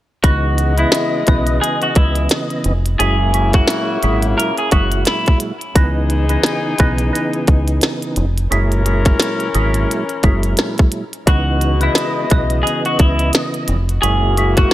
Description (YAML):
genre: hip hop, boom-bap hip-hop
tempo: 87 BPM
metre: 4/4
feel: swing 58% on 16ths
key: C# dorian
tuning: A4 = 440 Hz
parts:
  - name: semi-hollow electric guitar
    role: melody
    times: 0.2-5.4, 11.3-14.7 s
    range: E4 to A#4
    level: -20 LUFS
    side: equal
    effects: wide subtle chorus, high-pass filter, low-pass filter, tape echo
  - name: percussive tonewheel organ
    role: accompaniment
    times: 0.2-14.7 s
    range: A#2 to D#5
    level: -21 LUFS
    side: right 2 dB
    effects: chorus vibrato, slow rotary speaker, high-pass filter, low-pass filter
  - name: clear saxophone section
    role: stabs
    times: 0.2-14.7 s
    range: B2 to D#5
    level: -24 LUFS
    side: left 4 dB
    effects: high-pass filter, low-pass filter, tape echo
  - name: deep dub fingered electric bass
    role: bass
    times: 0.2-14.6 s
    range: E#1 to C#2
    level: -17 LUFS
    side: equal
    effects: none
  - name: minimal click drum kit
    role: drums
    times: 0.2-14.7 s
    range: hi-hat, kick drum, rim click, snare drum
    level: -15 LUFS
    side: equal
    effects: overdrive
room: digital ambience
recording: none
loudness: -14 LUFS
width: side -14 dB against mid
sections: 0.2-14.7 A section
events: none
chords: 0.2 C#m9; 3.0 F#9; 5.8 C#m9; 8.5 F#9; 11.3 C#m9; 14.0 F#9